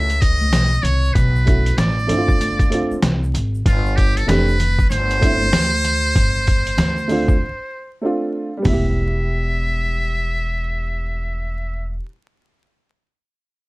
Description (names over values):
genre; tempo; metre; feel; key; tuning
hip hop, jazz-hop; 96 BPM; 4/4; swing 62% on 16ths; unclear; A4 = 442 Hz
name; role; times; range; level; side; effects
trumpet with metal mute; melody; 0.0-11.9 s; F4 to E5; -22 LUFS; equal; none
dark upright piano; accompaniment; 0.0-12.1 s; G3 to G4; -22 LUFS; right 2 dB; none
upright bass; bass; 0.0-12.0 s; E1 to D2; -20 LUFS; equal; none
trip hop sampler-style drum kit; drums; 0.1-8.8 s; hi-hat, kick drum, snare drum, toms; -18 LUFS; equal; none
tube shaker and congas; percussion; 0.1-8.9 s; none; -32 LUFS; left 1 dB; none
room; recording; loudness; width
little or no reverb; vinyl crackle; -16 LUFS; side -21 dB against mid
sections
0.0-8.7 A section; 8.7-11.2 B section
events
break 7.4-8.7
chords
0.0 B7sus2; 2.1 G9sus4; 8.7 Em